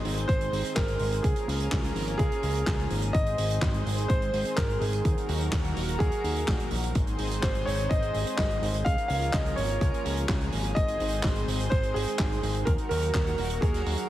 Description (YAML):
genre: italo disco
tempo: 126 BPM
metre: 4/4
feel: straight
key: Ab mixolydian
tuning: A4 = 440 Hz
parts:
  - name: lush unison pad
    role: sustained chords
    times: 0.0-14.1 s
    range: Eb3 to C5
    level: -34 LUFS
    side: equal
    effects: chorus
  - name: fat analog bass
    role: bass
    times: 0.0-14.0 s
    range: Eb1 to Eb2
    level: -30 LUFS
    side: equal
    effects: none
  - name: soft-mallet drum kit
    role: drums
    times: 0.0-14.1 s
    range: handclaps, hi-hat, snare drum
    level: -35 LUFS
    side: right 1 dB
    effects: none
  - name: warm concert grand piano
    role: melody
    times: 0.3-14.1 s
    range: Ab4 to F5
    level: -31 LUFS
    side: right 1 dB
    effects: tape echo
  - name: electronic kick drum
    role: drums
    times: 0.3-13.7 s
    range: none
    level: -28 LUFS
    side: equal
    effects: none
room: moderate lush hall reverb, RT60 2.5 s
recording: heavily compressed radio sound, multiband compression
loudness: -25 LUFS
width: side -14 dB against mid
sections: 0.0-14.1 A section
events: none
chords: 0.0 Ab; 1.2 Db6; 3.1 Ab; 5.0 Ebm; 7.0 Ab; 8.9 Db6; 10.8 Ab; 12.7 Ebm